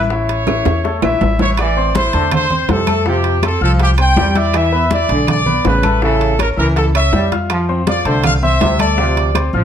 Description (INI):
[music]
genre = latin, salsa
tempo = 162 BPM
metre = 4/4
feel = straight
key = unclear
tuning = A4 = 440 Hz
[part]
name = bright concert grand piano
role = accompaniment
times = 0.0-9.6 s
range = E3 to F6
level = -21 LUFS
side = left 5 dB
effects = none
[part]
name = upright bass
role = bass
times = 0.0-9.6 s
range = A1 to F2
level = -17 LUFS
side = equal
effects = none
[part]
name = bright trumpet section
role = melody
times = 0.1-9.5 s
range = G4 to G5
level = -18 LUFS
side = right 1 dB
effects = slapback echo, plate reverb
[part]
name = bongos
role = percussion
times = 0.1-9.5 s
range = none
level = -24 LUFS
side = left 6 dB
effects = none
[part]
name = congas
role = percussion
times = 0.1-9.6 s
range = none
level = -22 LUFS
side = left 2 dB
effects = none
[part]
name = timbales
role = percussion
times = 0.3-9.5 s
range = none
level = -24 LUFS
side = right 10 dB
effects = none
[part]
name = claves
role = percussion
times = 0.5-9.5 s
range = none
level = -29 LUFS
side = right 6 dB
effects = none
[part]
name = bright trombone section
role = second line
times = 1.6-9.6 s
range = C3 to G3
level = -20 LUFS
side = right 2 dB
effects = none
[sound]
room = moderate studio reverb, RT60 0.8 s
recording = dark, warm production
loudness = -12 LUFS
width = side -9 dB against mid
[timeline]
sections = 0.0-1.6 A section; 1.6-9.6 B section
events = drum fill 0.5-1.6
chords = 0.1 A; 1.6 Am; 3.1 Fsus2; 4.5 E7; 6.0 A; 7.5 F; 9.0 Dm7